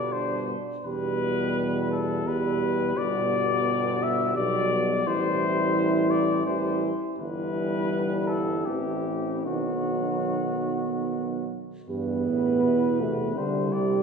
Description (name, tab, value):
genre	classical, hymn-like piece for brass band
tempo	73-87 BPM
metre	3/4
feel	rubato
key	E minor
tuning	A4 = 436 Hz
part	warm cornet	melody	0.0-14.0 s	F#4 to E5	-29 LUFS	left 5 dB	none
part	warm French horn section	second line	0.0-14.0 s	B3 to G4	-30 LUFS	right 3 dB	none
part	clear trombone	accompaniment	0.0-14.0 s	G2 to E3	-32 LUFS	right 3 dB	none
part	mellow euphonium	accompaniment	0.0-14.0 s	F#3 to C4	-30 LUFS	equal	none
part	clear tuba	bass	0.0-14.0 s	G1 to E2	-31 LUFS	equal	none
room	wet scoring stage reverb, RT60 1.8 s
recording	heard from further back in the room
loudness	-24 LUFS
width	side -5 dB against mid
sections	0.0-11.9 A section; 11.9-14.0 B section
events	none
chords	0.0 G; 0.9 Em; 3.0 G; 5.1 Am7; 7.2 Em/G; 8.7 Am; 9.5 B; 11.9 Em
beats	0.13 | 0.85 1.56 2.26 | 2.96 3.66 4.37 | 5.07 5.76 6.46 | 7.19 7.92 8.67 | 9.47 10.29 11.10 | 11.89 12.64 13.37